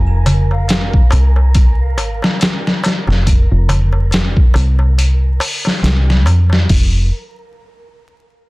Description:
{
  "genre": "trip hop",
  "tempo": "70 BPM",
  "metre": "4/4",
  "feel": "swing 56% on 16ths",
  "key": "unclear",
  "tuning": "A4 = 439 Hz",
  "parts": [
    { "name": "deep dub fingered electric bass", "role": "bass", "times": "0.0-7.1 s", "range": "F1 to F2", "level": "-12 LUFS", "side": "equal", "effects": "none" },
    { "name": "wind-like tuned noise texture", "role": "texture", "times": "0.0-6.7 s", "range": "Bb4", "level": "-31 LUFS", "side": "right 2 dB", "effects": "built-in reverb" },
    { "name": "trip hop sampler-style drum kit", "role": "drums", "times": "0.3-6.9 s", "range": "hi-hat, kick drum, snare drum", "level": "-14 LUFS", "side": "equal", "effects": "none" },
    { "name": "darbuka", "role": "percussion", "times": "0.3-6.7 s", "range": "none", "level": "-21 LUFS", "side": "left 1 dB", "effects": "none" }
  ],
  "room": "small room ambience",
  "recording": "dense, heavily limited modern master, vinyl crackle",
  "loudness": "-11 LUFS",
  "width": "side -22 dB against mid",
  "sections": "0.0-6.7 A section; 6.7-8.5 B section",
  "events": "filter sweep on fingered electric bass 0.0-6.7",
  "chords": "0.0 F5; 6.7 N.C."
}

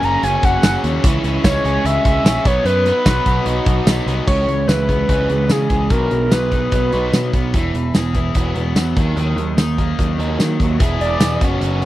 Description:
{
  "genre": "indie rock",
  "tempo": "147 BPM",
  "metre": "4/4",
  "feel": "straight",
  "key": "unclear",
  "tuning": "A4 = 440 Hz",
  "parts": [
    { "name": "overdriven synth lead", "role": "melody", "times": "0.0-7.3, 11.0-11.4 s", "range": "G#4 to A#5", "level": "-20 LUFS", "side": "equal", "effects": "tape echo" },
    { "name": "biting overdriven guitar", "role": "riff", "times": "0.0-11.9 s", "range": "E3 to G#4", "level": "-23 LUFS", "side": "right 6 dB", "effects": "wide subtle chorus" },
    { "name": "raw garage guitar", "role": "riff", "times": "0.0-11.9 s", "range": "F#2 to G#4", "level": "-24 LUFS", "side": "left 5 dB", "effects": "overdrive" },
    { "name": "growling picked electric bass", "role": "bass", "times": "0.0-11.9 s", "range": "E1 to D#3", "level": "-20 LUFS", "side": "equal", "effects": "overdrive" },
    { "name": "loose indie drum kit", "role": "drums", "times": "0.0-11.9 s", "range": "crash cymbal, hi-hat, kick drum, snare drum, tambourine", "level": "-17 LUFS", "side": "equal", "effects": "none" }
  ],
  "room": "little or no reverb",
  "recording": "dry, close 1970s-style studio recording",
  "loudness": "-14 LUFS",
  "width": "side -15 dB against mid",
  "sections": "0.0-4.3 A section; 4.3-10.8 B section; 10.8-11.9 C section",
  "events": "analog synth lead solo 10.8-11.9",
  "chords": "0.0 F#add9; 1.0 C#m; 2.5 B; 4.3 C#m7; 5.9 B6; 7.5 Eadd9; 9.0 D#m; 10.8 E"
}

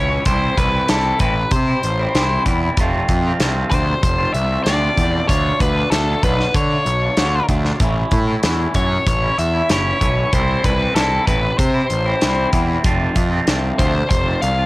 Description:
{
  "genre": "quiet-loud alternative rock",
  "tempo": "95 BPM",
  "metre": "4/4",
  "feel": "straight",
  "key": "unclear",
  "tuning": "A4 = 440 Hz",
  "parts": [
    { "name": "biting lead guitar", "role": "melody", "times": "0.0-14.7 s", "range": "A4 to F5", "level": "-20 LUFS", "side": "left 1 dB", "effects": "overdrive, cassette tape" },
    { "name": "twangy electric guitar", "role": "arpeggios", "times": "0.0-14.7 s", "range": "F2 to F4", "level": "-24 LUFS", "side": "equal", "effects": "phaser, cassette tape" },
    { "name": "fuzz picked electric bass", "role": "bass", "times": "0.0-14.7 s", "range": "F1 to D3", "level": "-19 LUFS", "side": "equal", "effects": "overdrive" },
    { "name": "big rock drum kit", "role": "drums", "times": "0.3-14.6 s", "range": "hi-hat, kick drum, snare drum", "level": "-20 LUFS", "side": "equal", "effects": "cassette tape" }
  ],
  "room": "light reverb",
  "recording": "home recording on cassette",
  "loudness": "-15 LUFS",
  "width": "side -19 dB against mid",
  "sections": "0.0-14.7 A section",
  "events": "none",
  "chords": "0.3 C; 2.8 F; 5.3 Dm; 7.8 A; 10.3 C; 12.9 F"
}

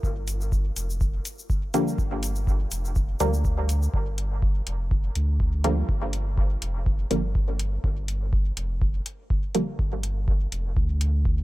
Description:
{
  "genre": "dub techno",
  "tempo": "123 BPM",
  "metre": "4/4",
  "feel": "swing 55% on 16ths",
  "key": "G minor",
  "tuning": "A4 = 436 Hz",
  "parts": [
    { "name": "warm sub bass", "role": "bass", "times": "0.0-11.4 s", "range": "F1 to D2", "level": "-26 LUFS", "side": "equal", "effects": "sidechain pumping" },
    { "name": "electronic kick drum", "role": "drums", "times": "0.0-11.4 s", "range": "none", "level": "-25 LUFS", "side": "equal", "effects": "none" },
    { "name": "egg shaker", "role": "percussion", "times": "0.0-3.9 s", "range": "none", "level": "-38 LUFS", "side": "left 3 dB", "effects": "none" },
    { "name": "electronic hi-hat", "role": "drums", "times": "0.3-11.1 s", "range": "none", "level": "-35 LUFS", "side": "left 1 dB", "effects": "none" },
    { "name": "filtered dub chord stab", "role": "stabs", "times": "1.7-11.0 s", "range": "D3 to Bb3", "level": "-30 LUFS", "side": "equal", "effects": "chorus, phaser, sidechain pumping, dub echo" }
  ],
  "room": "little or no reverb",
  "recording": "none",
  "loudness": "-23 LUFS",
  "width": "side -17 dB against mid",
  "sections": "0.0-3.9 A section; 3.9-11.4 A section",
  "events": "filter sweep on synth stab 3.9-11.4",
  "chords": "0.0 Gm7"
}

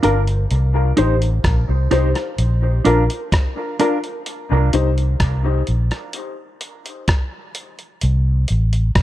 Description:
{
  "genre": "dub reggae",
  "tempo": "64 BPM",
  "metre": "4/4",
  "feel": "straight",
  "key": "C dorian",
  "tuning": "A4 = 440 Hz",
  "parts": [
    { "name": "mellow electric guitar", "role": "accompaniment", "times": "0.0-4.0 s", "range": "D4 to C5", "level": "-23 LUFS", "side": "right 4 dB", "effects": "dub echo" },
    { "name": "warm upright piano", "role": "stabs", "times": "0.0-4.9 s", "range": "D4 to C5", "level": "-23 LUFS", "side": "left 6 dB", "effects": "dub echo" },
    { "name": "vintage muted fingered electric bass", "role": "bass", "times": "0.0-9.0 s", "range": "G1 to C2", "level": "-16 LUFS", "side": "equal", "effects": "none" },
    { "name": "dusty soul sampler-style drum kit", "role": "drums", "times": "0.0-9.0 s", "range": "hi-hat, kick drum, rim click", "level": "-20 LUFS", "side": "equal", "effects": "none" }
  ],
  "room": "light reverb",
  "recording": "echo-heavy mix",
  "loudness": "-16 LUFS",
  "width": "side -14 dB against mid",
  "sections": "0.5-9.0 A section",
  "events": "break 4.3-9.0",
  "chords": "0.0 Bb; 0.5 Cm; 2.4 Bb; 4.3 N.C.; 8.0 Am"
}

